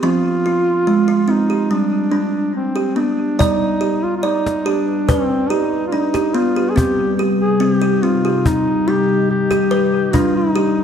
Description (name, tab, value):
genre	world meditative, meditative tuned percussion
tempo	71 BPM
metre	4/4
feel	straight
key	unclear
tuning	A4 = 441 Hz
part	mellow duduk	melody	0.0-10.8 s	C4 to Ab4	-19 LUFS	left 1 dB	diffuse ambient delay
part	kalimba	arpeggios	0.0-10.8 s	F3 to D5	-18 LUFS	right 2 dB	diffuse ambient delay
part	deep dark ambient pad	sustained chords	4.6-10.8 s	C3 to D5	-20 LUFS	left 2 dB	chorus, built-in reverb
part	cajon	percussion	3.4-10.8 s	none	-20 LUFS	left 1 dB	none
room	moderate echo chamber reverb, RT60 1.9 s, studio reverb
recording	none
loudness	-14 LUFS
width	side -8 dB against mid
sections	0.0-3.4 A section; 3.4-10.8 B section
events	none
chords	0.0 Fm; 1.7 G; 6.8 Cm; 10.1 G